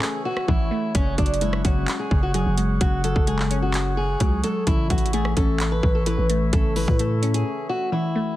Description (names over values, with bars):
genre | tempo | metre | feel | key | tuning
hip hop, trap | 129 BPM | 4/4 | half-time | unclear | A4 = 440 Hz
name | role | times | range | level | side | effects
fingerpicked old ladder-braced acoustic guitar | melody | 0.0-8.4 s | C#4 to B4 | -27 LUFS | equal | low-pass filter, digital delay
glassy wavetable pluck | accompaniment | 0.0-8.4 s | C#3 to C#4 | -27 LUFS | left 2 dB | chorus, low-pass filter
mellow woodwind section | sustained chords | 0.0-8.2 s | A3 to C#6 | -35 LUFS | equal | none
trap drum kit | drums | 0.0-7.5 s | handclaps, hi-hat, kick drum, rim click | -23 LUFS | equal | vintage 12-bit sampler grit
growling 808-style bass | bass | 0.5-7.4 s | F#1 to A2 | -24 LUFS | equal | none
room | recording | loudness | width
little or no reverb | dense, heavily limited modern master | -19 LUFS | side -15 dB against mid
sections
0.0-8.4 A section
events
break 0.0-0.9, 7.5-8.4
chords
0.0 A; 0.9 F#sus2; 4.7 A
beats
0.02 0.48 | 0.95 1.41 1.88 2.34 | 2.81 3.27 3.74 4.20 | 4.67 5.13 5.60 6.07 | 6.53 7.00 7.46 7.92